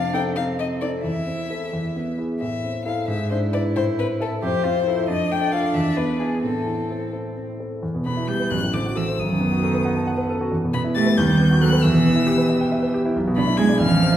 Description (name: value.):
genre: quick classical-period movement for piano trio.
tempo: 90 BPM (dotted quarters).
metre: 6/8.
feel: rubato.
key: A minor, E minor from 7.8 s.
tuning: A4 = 441 Hz.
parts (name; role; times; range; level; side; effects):
rich violin; melody; 0.0-14.2 s; G#4 to A6; -26 LUFS; left 6 dB; none.
rich cello; second line; 0.0-14.2 s; B2 to G4; -25 LUFS; right 3 dB; none.
clear grand piano; accompaniment; 0.0-14.2 s; A1 to A5; -21 LUFS; equal; none.
room: wet recital hall reverb, RT60 1.5 s.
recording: heard from further back in the room.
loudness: -19 LUFS.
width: side -11 dB against mid.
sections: 0.0-7.8 A section; 7.8-14.2 B section.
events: none.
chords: 0.0 F7; 1.0 Am/E; 1.7 E; 2.4 Am; 3.1 E7/G#; 3.8 Am; 4.4 F; 5.1 F13; 5.7 E; 6.4 Am; 7.8 Em; 8.5 F#dim/A; 9.2 B7; 10.5 Em; 11.2 B7/D#; 11.8 Em; 13.2 E7/B.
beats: 0.36 | 1.04 1.72 | 2.41 3.09 | 3.76 4.42 | 5.09 5.75 | 6.43 7.13 | 7.82 8.51 | 9.18 9.85 | 10.52 11.18 | 11.84 12.50 | 13.15 13.80.